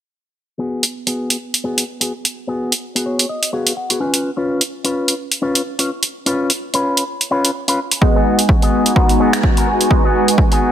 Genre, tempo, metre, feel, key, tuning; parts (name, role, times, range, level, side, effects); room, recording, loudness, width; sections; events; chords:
filtered disco house; 127 BPM; 4/4; swing 57% on 16ths; A4 = 440 Hz
electric guitar with an envelope filter; riff; 0.6-10.7 s; Cb4 to Ab5; -20 LUFS; left 2 dB; sidechain pumping, low-pass filter
punchy analog drum machine; drums; 0.8-10.6 s; finger snaps, hi-hat; -17 LUFS; right 1 dB; overdrive, sidechain pumping on hats
funky polysynth comp; accompaniment; 8.0-10.7 s; Ab3 to Gb4; -16 LUFS; equal; chorus, phaser, sidechain pumping, low-pass filter
rich chamber violin section; sustained chords; 8.0-10.7 s; Cb4 to Ab5; -22 LUFS; equal; sidechain pumping, low-pass filter
electronic kick drum; drums; 8.0-10.5 s; -14 LUFS; equal; overdrive
tambourine; percussion; 8.0-10.7 s; barely audible
light reverb, digital ambience; -14 LUFS; side -10 dB against mid
0.5-10.7 A section
filter sweep 0.5-10.7; clean electric guitar fill 2.8-4.2
0.5 Abm7; 4.0 Db7; 8.0 Abm7